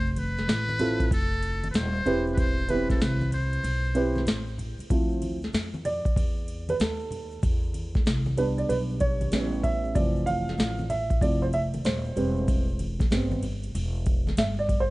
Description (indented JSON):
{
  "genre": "hip hop, jazz-hop",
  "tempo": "95 BPM",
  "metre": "4/4",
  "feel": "swing 65% on 16ths",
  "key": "D dorian",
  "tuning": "A4 = 445 Hz",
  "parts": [
    { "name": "trumpet with metal mute", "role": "melody", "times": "0.0-4.6 s", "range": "A4 to C5", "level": "-32 LUFS", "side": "left 1 dB", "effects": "slapback echo" },
    { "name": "upright bass", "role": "bass", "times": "0.0-14.9 s", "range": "Eb1 to F2", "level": "-30 LUFS", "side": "equal", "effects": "none" },
    { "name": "tube shaker and congas", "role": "percussion", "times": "0.1-14.9 s", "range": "none", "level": "-39 LUFS", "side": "left 1 dB", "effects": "none" },
    { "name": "booming analog drum machine", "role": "drums", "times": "0.2-14.9 s", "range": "hi-hat, kick drum, ride cymbal, snare drum", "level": "-27 LUFS", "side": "equal", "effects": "overdrive" },
    { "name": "dark upright piano", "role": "accompaniment", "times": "0.8-14.9 s", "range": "E3 to F5", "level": "-28 LUFS", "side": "right 2 dB", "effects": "none" }
  ],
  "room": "little or no reverb",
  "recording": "dark, warm production, vinyl crackle, nothing above 10.7 kHz",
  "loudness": "-24 LUFS",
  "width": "side -20 dB against mid",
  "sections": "0.0-4.9 A section; 4.9-14.9 B section",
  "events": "break 3.6-4.9; upright piano solo 4.9-14.9",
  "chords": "0.0 F7#11; 2.1 Am9/E; 4.9 Dm9; 7.4 Em7; 9.3 A7; 10.0 Dm9; 12.2 Cmaj7/E",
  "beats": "0.48 1.12 1.75 | 2.38 3.01 3.64 4.27 | 4.91 5.54 6.17 6.80 | 7.43 8.06 8.70 9.33 | 9.96 10.59 11.22 11.85 | 12.48 13.12 13.75 14.38"
}